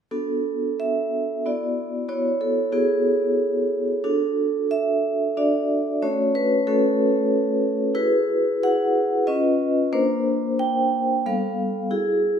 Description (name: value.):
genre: classical, contemporary piece for solo vibraphone.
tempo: 92 BPM.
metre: 3/4.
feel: rubato.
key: unclear.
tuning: A4 = 440 Hz.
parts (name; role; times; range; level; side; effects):
vibraphone with medium mallets; solo; 0.1-12.4 s; G3 to G5; -20 LUFS; equal; none.
room: wet recital hall reverb, RT60 1.7 s.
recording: minimal, uncompressed stereo recording.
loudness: -20 LUFS.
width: side -7 dB against mid.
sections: 0.1-12.4 A section.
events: none.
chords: 0.1 Bm7; 1.5 Dadd9/B; 4.0 D; 6.0 A6; 8.0 Eadd9; 9.3 C#9; 9.9 A#add9; 11.3 G9.